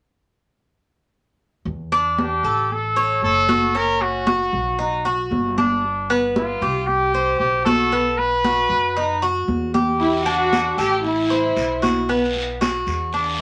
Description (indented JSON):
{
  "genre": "latin, Cuban son and guajira",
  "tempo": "115 BPM",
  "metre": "4/4",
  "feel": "straight",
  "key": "E minor",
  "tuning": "A4 = 435 Hz",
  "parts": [
    { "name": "upright bass", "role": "bass", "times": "1.7-13.4 s", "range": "F#1 to F#2", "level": "-32 LUFS", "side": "equal", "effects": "none" },
    { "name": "congas", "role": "percussion", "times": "1.7-13.4 s", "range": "none", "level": "-26 LUFS", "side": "equal", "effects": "none" },
    { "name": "Cuban tres", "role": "arpeggios", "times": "1.9-13.4 s", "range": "B3 to C#5", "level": "-24 LUFS", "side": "equal", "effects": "none" },
    { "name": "clear trumpet", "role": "melody", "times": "2.2-9.2 s", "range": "F4 to B4", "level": "-22 LUFS", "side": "equal", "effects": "none" },
    { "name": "dark studio violin section", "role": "second line", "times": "10.0-12.1 s", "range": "E4 to G4", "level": "-23 LUFS", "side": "equal", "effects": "none" },
    { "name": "guiro", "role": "percussion", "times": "10.0-13.4 s", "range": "none", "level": "-33 LUFS", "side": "equal", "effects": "none" }
  ],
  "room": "wet studio reverb, RT60 0.5 s",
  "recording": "none",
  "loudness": "-20 LUFS",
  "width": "mono",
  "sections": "1.7-13.4 A section",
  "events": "none",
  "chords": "1.7 Em7; 2.7 A; 3.7 F#5; 4.8 B; 5.8 G7; 6.9 C5; 7.9 B; 10.0 Em7; 11.1 Amadd9; 12.1 B5"
}